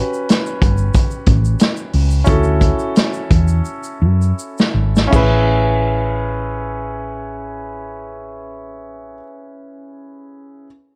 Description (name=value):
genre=lush 1970s-style soul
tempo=79-93 BPM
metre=4/4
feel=swing 54% on 16ths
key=A major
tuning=A4 = 440 Hz
part: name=warm concert grand piano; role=accompaniment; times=0.0-10.7 s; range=C#4 to B4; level=-25 LUFS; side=equal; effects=none
part: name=egg shaker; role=percussion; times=0.1-5.5 s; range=none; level=-40 LUFS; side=equal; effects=none
part: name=vintage drum kit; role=drums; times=0.3-5.3 s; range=crash cymbal, hi-hat, kick drum, snare drum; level=-18 LUFS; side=equal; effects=none
part: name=hollow-body short-scale fingered electric bass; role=bass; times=0.6-9.2 s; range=G1 to F#2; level=-19 LUFS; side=equal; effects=none
room=small room reverb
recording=dark, warm production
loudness=-16 LUFS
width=mono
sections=0.0-5.1 A section; 5.1-8.2 B section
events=slowing down 0.0-5.1; drum fill 3.7-5.1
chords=0.0 A13 (rootless); 2.3 Dmaj7; 5.1 Amaj9